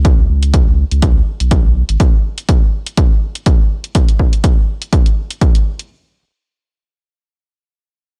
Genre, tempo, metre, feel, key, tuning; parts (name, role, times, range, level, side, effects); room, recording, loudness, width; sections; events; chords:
acid house; 123 BPM; 4/4; swing 55% on 16ths; A4 = 440 Hz
saturated sub bass; bass; 0.0-2.0 s; Ab1 to Db2; -16 LUFS; equal; tube saturation, sidechain pumping
electronic hi-hat; drums; 0.0-5.9 s; -26 LUFS; equal
electronic kick drum; drums; 0.0-5.5 s; -14 LUFS; equal
little or no reverb; -14 LUFS; mono
0.0-5.9 A section